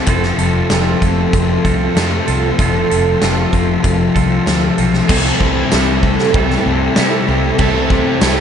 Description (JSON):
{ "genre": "rock, shoegaze and dream pop", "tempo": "96 BPM", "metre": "4/4", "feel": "straight", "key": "C major", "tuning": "A4 = 442 Hz", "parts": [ { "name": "string machine, cellos", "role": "sustained chords", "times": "0.0-8.4 s", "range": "A4 to C6", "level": "-25 LUFS", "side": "equal", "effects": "none" }, { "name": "picked plugged-in twelve-string acoustic guitar", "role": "arpeggios", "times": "0.0-8.4 s", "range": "F4 to C5", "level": "-23 LUFS", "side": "right 7 dB", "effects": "analog chorus, analog delay" }, { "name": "thick fuzz guitar", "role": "riff", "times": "0.0-8.4 s", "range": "F2 to C4", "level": "-17 LUFS", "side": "left 6 dB", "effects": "distortion, wide subtle chorus" }, { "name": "twangy electric guitar", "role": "riff", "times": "0.0-8.4 s", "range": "C3 to A4", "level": "-21 LUFS", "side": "right 7 dB", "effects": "reverse reverb" }, { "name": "vintage muted fingered electric bass", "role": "bass", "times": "0.1-8.4 s", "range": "F1 to C3", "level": "-19 LUFS", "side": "equal", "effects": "none" }, { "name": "huge arena drum kit", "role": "drums", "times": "0.1-8.4 s", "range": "crash cymbal, hi-hat, kick drum, snare drum", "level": "-18 LUFS", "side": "equal", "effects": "none" }, { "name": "biting overdriven guitar", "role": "riff", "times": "5.1-8.4 s", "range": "C3 to C4", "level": "-21 LUFS", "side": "left 1 dB", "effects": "none" }, { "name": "tambourine", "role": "percussion", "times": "5.7-8.4 s", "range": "none", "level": "-30 LUFS", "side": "right 11 dB", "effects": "none" } ], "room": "moderate huge ambient reverb, RT60 7.2 s", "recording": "dreamy mix soaked in reverb, nothing above 10.6 kHz", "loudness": "-12 LUFS", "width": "side -8 dB against mid", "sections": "0.0-5.1 A section; 5.1-8.4 B section", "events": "none", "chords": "0.1 F; 5.1 C6" }